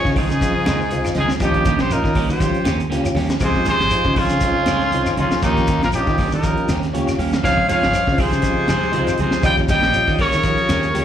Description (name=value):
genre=afrobeat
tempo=120 BPM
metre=4/4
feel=swing 55% on 16ths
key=unclear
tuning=A4 = 440 Hz
part: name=clear trumpet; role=melody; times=0.0-11.0 s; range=Eb4 to G5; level=-20 LUFS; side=equal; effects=slapback echo
part: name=bright alto saxophone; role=second line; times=0.0-11.0 s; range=Bb3 to Eb5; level=-27 LUFS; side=right 2 dB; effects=slapback echo
part: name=edgy baritone saxophone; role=second line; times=0.0-11.0 s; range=Eb2 to G3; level=-29 LUFS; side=left 6 dB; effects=slapback echo
part: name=tonewheel organ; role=accompaniment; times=0.0-11.0 s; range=C4 to F5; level=-26 LUFS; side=left 2 dB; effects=slow rotary speaker, overdrive, slapback echo
part: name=clean electric guitar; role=arpeggios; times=0.1-10.9 s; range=Eb3 to G3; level=-30 LUFS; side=left 6 dB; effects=slapback echo
part: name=fingered electric bass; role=bass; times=0.1-11.0 s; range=Ab1 to Eb3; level=-23 LUFS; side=equal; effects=none
part: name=crunchy breakbeat drum kit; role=drums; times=0.1-11.0 s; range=hi-hat, kick drum, snare drum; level=-23 LUFS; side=equal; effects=none
part: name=shekere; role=percussion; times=0.1-10.9 s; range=none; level=-30 LUFS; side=left 2 dB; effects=none
part: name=electric guitar at the edge of break-up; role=stabs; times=0.2-11.0 s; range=Eb3 to Ab4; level=-26 LUFS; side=right 8 dB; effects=phaser, slapback echo
part: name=claves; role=percussion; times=0.2-10.8 s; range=none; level=-36 LUFS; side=right 2 dB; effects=none
part: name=congas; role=percussion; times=0.2-11.0 s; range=none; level=-30 LUFS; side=right 2 dB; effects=none
room=light reverb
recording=live gig heard through the venue's PA, club reverb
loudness=-16 LUFS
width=side -10 dB against mid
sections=0.0-11.0 A section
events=tonewheel organ fill 6.7-7.4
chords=0.0 Dbmaj9; 1.4 Eb7; 3.4 Dbmaj9; 5.4 Eb7; 7.4 Dbmaj9; 9.4 Eb7